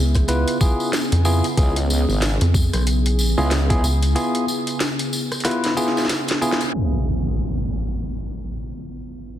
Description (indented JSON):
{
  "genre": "glitch hop",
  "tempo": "93 BPM",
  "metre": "4/4",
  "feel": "swing 59% on 16ths",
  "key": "unclear",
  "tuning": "A4 = 440 Hz",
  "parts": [
    { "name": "warbly tape-like pad", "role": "sustained chords", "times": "0.0-9.4 s", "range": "C#3 to G#4", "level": "-28 LUFS", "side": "left 1 dB", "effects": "chorus, built-in reverb, sidechain pumping" },
    { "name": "rubbery square bass", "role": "bass", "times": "0.0-4.2 s", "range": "B1 to E#2", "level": "-18 LUFS", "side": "equal", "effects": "tube saturation" },
    { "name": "tambourine", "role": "percussion", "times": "0.1-6.7 s", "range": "none", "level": "-30 LUFS", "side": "left 1 dB", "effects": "none" },
    { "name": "drum and bass drum kit", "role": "drums", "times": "0.2-6.7 s", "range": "hi-hat, rim click, snare drum", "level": "-25 LUFS", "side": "equal", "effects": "low-pass filter on hats, low-pass filter on snare, low-pass filter on room" },
    { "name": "electronic kick drum", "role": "drums", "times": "0.2-3.8 s", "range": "none", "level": "-18 LUFS", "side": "equal", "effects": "overdrive" },
    { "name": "bell-like tine electric piano", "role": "stabs", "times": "0.3-6.6 s", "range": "B3 to B4", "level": "-24 LUFS", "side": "equal", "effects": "sidechain pumping, tape echo" },
    { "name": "formant-sweep wobble bass", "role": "bass", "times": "1.6-3.8 s", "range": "G#1 to C#2", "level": "-20 LUFS", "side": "equal", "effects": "chorus" },
    { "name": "impact", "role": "sound effects", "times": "6.7-9.3 s", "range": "none", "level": "-24 LUFS", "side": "equal", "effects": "none" }
  ],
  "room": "moderate lush hall reverb, RT60 1.8 s",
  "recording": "dense, heavily limited modern master, vinyl crackle, low-pass filter",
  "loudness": "-18 LUFS",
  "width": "side -11 dB against mid",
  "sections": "0.0-6.7 A section; 6.7-9.4 B section",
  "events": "break 4.2-6.7; drum fill 5.4-6.7; band accent 6.5-6.8; impact 6.7-9.3; filter sweep 6.7-9.4",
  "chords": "0.0 C#7#9",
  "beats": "0.29 0.93 | 1.58 2.22 2.87 3.51 | 4.16 4.80 5.45 6.09 | 6.74 7.38 8.03 8.68 | 9.32"
}